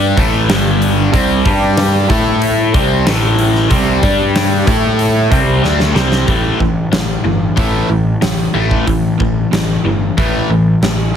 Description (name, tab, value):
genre	hard rock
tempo	93 BPM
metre	4/4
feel	straight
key	A minor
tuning	A4 = 440 Hz
part	cranked stack guitar	riff	0.0-11.1 s	G2 to A4	-16 LUFS	left 8 dB	overdrive, phaser
part	cranked stack guitar	riff	0.0-11.1 s	G2 to A4	-19 LUFS	right 12 dB	overdrive
part	fuzz picked electric bass	bass	0.0-11.2 s	G1 to A2	-17 LUFS	equal	overdrive
part	huge arena drum kit	drums	0.2-11.0 s	hi-hat, kick drum, snare drum	-17 LUFS	equal	none
part	raw garage guitar	riff	1.1-6.3 s	A2 to A4	-19 LUFS	equal	overdrive, spring reverb
room	light reverb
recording	heavily compressed radio sound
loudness	-11 LUFS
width	side -8 dB against mid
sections	0.0-6.3 A section; 6.3-11.2 B section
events	drum fill 5.6-6.3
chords	0.2 A5; 0.5 G5; 1.1 C5; 1.5 G5; 2.1 A5; 2.7 C5; 3.1 A5; 3.7 C5; 4.0 G5; 4.7 A5; 5.3 C5; 6.3 A5